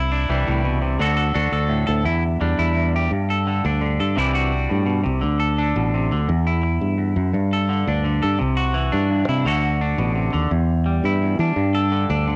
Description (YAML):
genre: highlife guitar band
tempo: 114 BPM (dotted quarters)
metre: 12/8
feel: straight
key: unclear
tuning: A4 = 440 Hz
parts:
  - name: clean electric guitar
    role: accompaniment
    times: 0.0-12.4 s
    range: E2 to A4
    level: -24 LUFS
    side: equal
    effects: cassette tape
  - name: fingered electric bass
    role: bass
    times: 0.0-12.4 s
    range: A1 to E3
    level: -23 LUFS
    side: equal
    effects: none
room: light reverb, digital ambience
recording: home recording on cassette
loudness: -21 LUFS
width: mono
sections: 0.0-3.1 A section; 3.1-12.4 B section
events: none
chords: 0.0 Cadd9; 1.0 D; 2.1 Em7; 3.1 Gsus2; 4.2 Cadd9; 5.2 D5; 6.3 Emadd9; 7.3 Gsus2; 8.4 Cadd9; 9.5 D; 10.5 Em7; 11.6 Gsus2